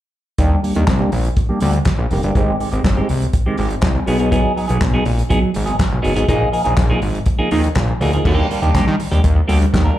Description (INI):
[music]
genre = disco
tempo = 122 BPM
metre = 4/4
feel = straight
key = Eb major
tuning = A4 = 440 Hz
[part]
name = clean electric guitar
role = accompaniment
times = 0.4-10.0 s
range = Eb3 to Bb4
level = -20 LUFS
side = right 2 dB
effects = phaser, low-pass filter, plate reverb, slapback echo
[part]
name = fat analog bass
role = bass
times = 0.4-9.9 s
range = F1 to Eb3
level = -17 LUFS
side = equal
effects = none
[part]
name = warm soul drum kit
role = drums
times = 0.4-9.9 s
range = crash cymbal, handclaps, hi-hat, kick drum, snare drum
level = -19 LUFS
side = equal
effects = none
[sound]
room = light reverb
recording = live gig heard through the venue's PA, club reverb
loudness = -14 LUFS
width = side -13 dB against mid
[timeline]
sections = 0.4-8.3 A section; 8.3-10.0 B section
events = filter sweep on clean electric guitar 0.4-8.3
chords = 0.4 Ebmaj7; 2.4 Abmaj7; 4.1 B6; 6.3 Bb7sus4; 8.3 Ebmaj7